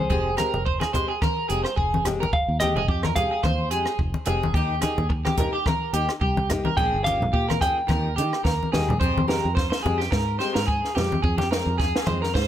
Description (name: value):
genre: highlife guitar band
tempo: 108 BPM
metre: 4/4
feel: swing 55% on 16ths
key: F minor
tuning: A4 = 441 Hz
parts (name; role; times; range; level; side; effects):
- semi-hollow electric guitar; melody; 0.0-8.1 s; C5 to G5; -26 LUFS; equal; none
- electric guitar at the edge of break-up; arpeggios; 0.0-12.5 s; G4 to C5; -26 LUFS; right 2 dB; lush chorus, tape echo
- fingered electric bass; bass; 0.0-12.5 s; F1 to Eb3; -27 LUFS; equal; none
- picked steel-string acoustic guitar; accompaniment; 0.1-12.3 s; Eb3 to G4; -30 LUFS; left 4 dB; none
- compact cocktail drum kit; drums; 0.1-12.5 s; hi-hat, kick drum, rim click, snare drum, toms; -26 LUFS; equal; none
- congas; percussion; 0.4-12.2 s; none; -28 LUFS; left 2 dB; none
room: light reverb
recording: none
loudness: -21 LUFS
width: side -11 dB against mid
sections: 0.0-9.0 A section; 9.0-12.5 B section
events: clean electric guitar solo 0.0-9.0; drum fill 8.5-9.0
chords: 0.1 Fmadd9; 4.6 Eb; 6.8 Bbm; 7.9 Ebadd9; 9.0 Fmadd9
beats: | 0.11 0.66 1.22 1.77 | 2.33 2.89 3.44 4.00 | 4.55 5.11 5.67 6.22 | 6.78 7.34 7.90 8.45 | 9.01 9.57 10.13 10.68 | 11.24 11.80 12.35